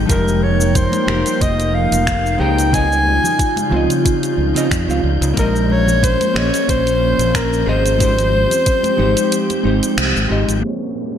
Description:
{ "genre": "sunset chillout", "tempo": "91 BPM", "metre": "4/4", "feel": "swing 54% on 16ths", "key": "unclear", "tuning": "A4 = 440 Hz", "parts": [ { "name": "hollow-body jazz guitar", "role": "accompaniment", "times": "0.0-11.2 s", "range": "Db3 to F5", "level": "-22 LUFS", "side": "moving between left 5 dB and right 3 dB", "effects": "auto-pan, vintage 12-bit sampler grit, low-pass filter, ping-pong delay, slapback echo" }, { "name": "airy breathy pad", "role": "sustained chords", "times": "0.0-11.2 s", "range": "Bb2 to G5", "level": "-21 LUFS", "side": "right 1 dB", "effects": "chorus" }, { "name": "modern bright fingered electric bass", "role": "bass", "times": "0.0-10.6 s", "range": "F1 to F2", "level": "-18 LUFS", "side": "equal", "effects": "tube saturation" }, { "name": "wind-like tuned noise texture", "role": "texture", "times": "0.0-11.2 s", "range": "G3 to G6", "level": "-30 LUFS", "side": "right 1 dB", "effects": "built-in reverb" }, { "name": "breathy soprano saxophone", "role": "melody", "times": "0.1-10.0 s", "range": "Bb4 to Ab5", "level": "-19 LUFS", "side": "left 1 dB", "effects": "ping-pong delay" }, { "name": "electronic kick drum", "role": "drums", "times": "0.1-8.8 s", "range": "none", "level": "-19 LUFS", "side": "equal", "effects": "none" }, { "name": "smooth R&B drum kit", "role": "drums", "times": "0.1-11.2 s", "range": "crash cymbal, finger snaps, hi-hat, shaker", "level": "-24 LUFS", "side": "right 1 dB", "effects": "low-pass filter on hats, low-pass filter on perc, low-pass filter on snare, low-pass filter on cymbals" }, { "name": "congas", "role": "percussion", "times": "0.4-10.3 s", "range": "none", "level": "-29 LUFS", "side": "left 1 dB", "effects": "none" }, { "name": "downlifter", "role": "sound effects", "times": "10.6-11.2 s", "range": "none", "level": "-32 LUFS", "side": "right 2 dB", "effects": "slapback echo" } ], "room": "wet lush hall reverb, RT60 1.9 s", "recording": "big arena sound, low-pass filter", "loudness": "-13 LUFS", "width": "side -9 dB against mid", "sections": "0.0-10.6 A section", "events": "kick drops out 9.3-10.6; band accent 10.0-10.3", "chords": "0.1 Fm11; 2.7 Dbmaj9; 5.4 Bbm11; 8.0 Abmaj7; 10.6 Bbm9" }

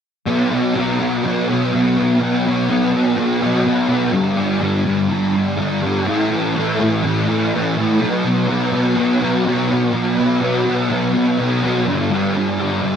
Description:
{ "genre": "rock", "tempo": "124 BPM", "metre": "4/4", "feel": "straight", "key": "B minor", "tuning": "A4 = 440 Hz", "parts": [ { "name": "thick fuzz guitar", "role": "solo", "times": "0.3-13.0 s", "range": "G2 to B3", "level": "-15 LUFS", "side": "equal", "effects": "distortion, ensemble chorus, slapback echo" } ], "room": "light reverb, digital ambience", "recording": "none", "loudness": "-15 LUFS", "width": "side -8 dB against mid", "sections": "0.3-13.0 A section", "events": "none", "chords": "0.3 B5; 4.1 G5; 6.1 A5; 8.0 B5; 11.9 G5" }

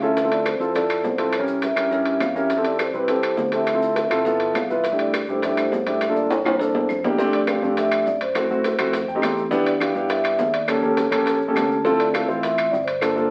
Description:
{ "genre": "Afro-Cuban jazz", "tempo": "205 BPM", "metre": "4/4", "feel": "straight", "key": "unclear", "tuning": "A4 = 440 Hz", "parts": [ { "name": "vibraphone with soft mallets", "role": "melody", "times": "0.0-13.3 s", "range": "B4 to F5", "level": "-26 LUFS", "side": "equal", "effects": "none" }, { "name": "warm concert grand piano", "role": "accompaniment", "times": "0.0-13.3 s", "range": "A3 to A5", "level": "-24 LUFS", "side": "equal", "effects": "none" }, { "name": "modern bright fingered electric bass", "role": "bass", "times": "0.0-13.3 s", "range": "G1 to G2", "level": "-37 LUFS", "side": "equal", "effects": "none" }, { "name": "bongos", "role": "percussion", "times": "0.0-13.3 s", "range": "none", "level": "-35 LUFS", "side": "equal", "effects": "none" }, { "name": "maracas", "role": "percussion", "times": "0.0-13.3 s", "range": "none", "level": "-51 LUFS", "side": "equal", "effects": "none" }, { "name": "timbales", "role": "percussion", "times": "0.2-13.2 s", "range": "none", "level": "-30 LUFS", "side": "equal", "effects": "none" }, { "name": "claves", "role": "percussion", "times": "0.5-13.2 s", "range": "none", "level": "-36 LUFS", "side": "equal", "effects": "none" } ], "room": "wet studio reverb, RT60 0.6 s", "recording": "very old 78 rpm record, vinyl crackle", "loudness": "-21 LUFS", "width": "mono", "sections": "0.0-7.2 A section; 7.2-13.3 B section", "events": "drum fill 6.3-7.2; grand piano fill 8.9-9.5, 11.4-11.8", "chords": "0.2 Dm9; 1.3 C7b9; 2.5 Fmaj9; 3.7 Dm9; 4.3 G13; 4.8 C69; 6.0 Gm7; 6.6 C13; 7.2 F6; 8.3 F#m7b5; 8.9 F9; 9.5 Em7; 10.7 Eb7#11; 11.8 Dm9" }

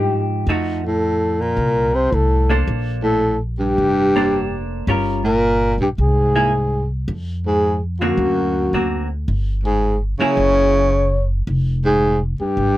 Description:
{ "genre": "jazz, small-group swing and bop", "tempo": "109 BPM", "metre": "4/4", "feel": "swing 67% on 8ths", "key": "unclear", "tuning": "A4 = 440 Hz", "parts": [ { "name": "breathy flugelhorn", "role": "melody", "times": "0.0-12.8 s", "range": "Gb4 to Db5", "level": "-19 LUFS", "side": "left 2 dB", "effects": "none" }, { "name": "dark baritone saxophone", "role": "second line", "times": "0.0-12.8 s", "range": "Gb2 to Db3", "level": "-21 LUFS", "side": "right 2 dB", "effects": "none" }, { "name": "vintage hollow-body jazz guitar", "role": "accompaniment", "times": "0.0-10.9 s", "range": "D3 to C5", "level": "-22 LUFS", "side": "right 1 dB", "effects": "none" }, { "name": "upright bass", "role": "bass", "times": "0.0-12.8 s", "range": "F1 to Ab2", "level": "-21 LUFS", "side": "equal", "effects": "none" } ], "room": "little or no reverb", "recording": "none", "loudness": "-16 LUFS", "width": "side -15 dB against mid", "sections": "0.0-12.8 A section", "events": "none", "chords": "0.5 F7b9; 2.7 Bbmaj9; 4.9 Gm7b5; 6.0 C7b13; 7.1 Fsus4; 8.2 Daug7; 9.3 Gdim7; 10.4 Gb9; 11.5 Fmadd9" }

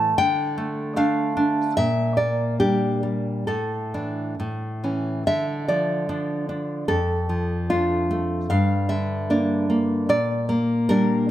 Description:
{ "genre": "romantic piece for solo classical guitar", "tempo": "66-77 BPM", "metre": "2/4", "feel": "rubato", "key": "D minor", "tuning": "A4 = 438 Hz", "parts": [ { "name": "nylon-string guitar", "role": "solo", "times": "0.0-11.3 s", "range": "F2 to A5", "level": "-20 LUFS", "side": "equal", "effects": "none" } ], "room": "light reverb", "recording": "none", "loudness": "-21 LUFS", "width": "side -12 dB against mid", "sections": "0.0-5.3 A section; 5.3-11.3 A section", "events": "none", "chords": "0.2 Dm; 1.8 Gm/Bb; 3.5 Asus4; 4.4 A; 5.3 Dm; 6.9 Dm/F; 8.5 Gm; 10.1 Gm/Bb" }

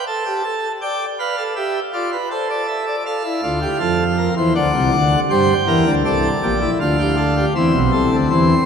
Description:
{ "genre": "classical, baroque-style 3-part fugue for pipe organ", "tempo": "80 BPM", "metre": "3/4", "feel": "straight", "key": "D minor", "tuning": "A4 = 440 Hz", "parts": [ { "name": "pipe organ, plenum", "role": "solo", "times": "0.0-8.7 s", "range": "Bb1 to A5", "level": "-16 LUFS", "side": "equal", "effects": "none" } ], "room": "wet church reverb, RT60 3.5 s", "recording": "none", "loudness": "-16 LUFS", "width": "side -7 dB against mid", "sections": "0.0-8.7 A section", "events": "none", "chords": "0.1 Gsus2; 0.8 Dm; 2.3 Am; 3.1 Dm; 4.6 D7; 5.3 Gm; 6.8 Dm; 7.6 Am" }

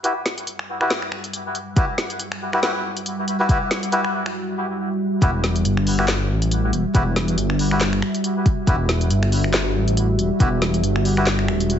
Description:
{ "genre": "deep dubstep", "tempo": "139 BPM", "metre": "4/4", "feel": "swing 56% on 16ths, half-time", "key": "E minor", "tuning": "A4 = 439 Hz", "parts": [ { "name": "deep dark ambient pad", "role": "sustained chords", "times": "1.2-11.8 s", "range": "G3 to E5", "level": "-25 LUFS", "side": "right 2 dB", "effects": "chorus, built-in reverb" }, { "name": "melodica", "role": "stabs", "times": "0.0-11.3 s", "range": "E4 to B4", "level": "-25 LUFS", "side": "left 1 dB", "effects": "low-pass filter, dub echo" }, { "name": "deep house drum kit", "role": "drums", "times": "0.0-11.8 s", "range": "finger snaps, handclaps, hi-hat, snare drum", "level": "-25 LUFS", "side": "left 1 dB", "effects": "none" }, { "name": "electronic kick drum", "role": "drums", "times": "1.8-10.5 s", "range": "none", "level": "-18 LUFS", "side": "equal", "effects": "none" }, { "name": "dark detuned saw bass", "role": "bass", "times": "5.2-11.8 s", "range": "D1 to A1", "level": "-20 LUFS", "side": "left 1 dB", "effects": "none" } ], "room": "light reverb", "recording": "heavily compressed radio sound, multiband compression, vinyl crackle, nothing above 7.9 kHz", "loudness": "-18 LUFS", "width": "side -9 dB against mid", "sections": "0.0-5.2 A section; 5.2-11.8 B section", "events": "build-up 0.0-5.2; filter sweep on ambient pad 0.0-5.2; break 4.4-5.2; drop 5.2-11.8", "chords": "0.0 Emadd9" }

